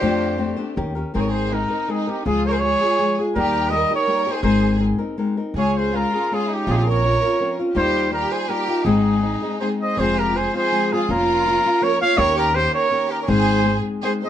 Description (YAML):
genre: mexican folk, mariachi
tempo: 163 BPM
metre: 3/4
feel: rubato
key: Ab major, F minor from 10.0 s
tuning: A4 = 440 Hz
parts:
  - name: warm trumpet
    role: melody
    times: 0.0-14.3 s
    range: G4 to F5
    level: -21 LUFS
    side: right 1 dB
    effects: none
  - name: warm symphonic violin section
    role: second line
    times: 0.0-14.3 s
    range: Eb4 to Db5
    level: -26 LUFS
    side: right 4 dB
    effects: none
  - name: nylon-string guitar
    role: accompaniment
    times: 0.0-14.3 s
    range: F2 to C5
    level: -22 LUFS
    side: left 3 dB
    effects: none
  - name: upright bass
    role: bass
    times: 0.0-13.8 s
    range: F1 to F2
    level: -25 LUFS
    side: right 1 dB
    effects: none
room: wet studio reverb, RT60 0.5 s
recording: nothing above 10.3 kHz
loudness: -17 LUFS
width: side -10 dB against mid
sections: 0.0-1.2 A section; 1.2-10.0 B section; 10.0-14.3 C section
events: none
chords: 0.0 F6; 0.8 Eb7; 1.2 Abadd9; 2.3 Db; 3.4 Eb; 4.4 Abadd9; 5.6 Db; 6.7 Bbmadd9; 7.8 Ebadd9; 8.9 Ab; 10.0 Fm; 11.1 Bbm/F; 12.2 Eb7; 13.3 Ab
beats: | 0.03 0.40 0.78 | 1.15 1.52 1.89 | 2.26 2.63 3.00 | 3.36 3.72 4.08 | 4.44 4.80 5.18 | 5.56 5.93 6.30 | 6.68 7.04 7.40 | 7.76 8.13 8.49 | 8.85 9.22 9.60 | 9.98 10.35 10.72 | 11.09 11.46 11.82 | 12.18 12.55 12.91 | 13.28 13.65 14.03